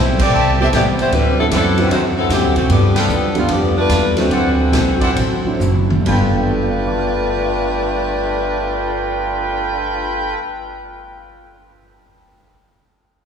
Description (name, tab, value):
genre	jazz, big band swing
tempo	129-152 BPM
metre	4/4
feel	swing 66% on 8ths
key	G mixolydian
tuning	A4 = 440 Hz
part	warm saxophone section	melody	0.0-10.4 s	E3 to E5	-19 LUFS	left 2 dB	none
part	hollow-body jazz guitar	accompaniment	0.0-10.5 s	A2 to A4	-23 LUFS	left 1 dB	none
part	upright bass	bass	0.0-10.3 s	F#1 to G2	-19 LUFS	right 1 dB	none
part	swinging big-band drum kit	drums	0.2-9.7 s	crash cymbal, cymbal swell, hi-hat, kick drum, ride cymbal, snare drum, toms	-24 LUFS	right 1 dB	none
part	warm trumpet section	stabs	0.3-10.4 s	E4 to A5	-23 LUFS	right 2 dB	none
part	dark baby grand piano	accompaniment	0.6-11.4 s	G2 to A6	-24 LUFS	right 1 dB	none
room	wet church reverb, RT60 3.3 s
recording	recorded in a church or concert hall, small room reverb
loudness	-14 LUFS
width	side -7 dB against mid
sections	0.0-6.1 A section; 6.1-9.8 B section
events	band accent 0.1, 2.9; slowing down 2.7-6.1; drum fill 5.6-6.1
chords	0.0 Am7; 1.1 D9; 2.7 G9; 4.3 D9; 6.1 G9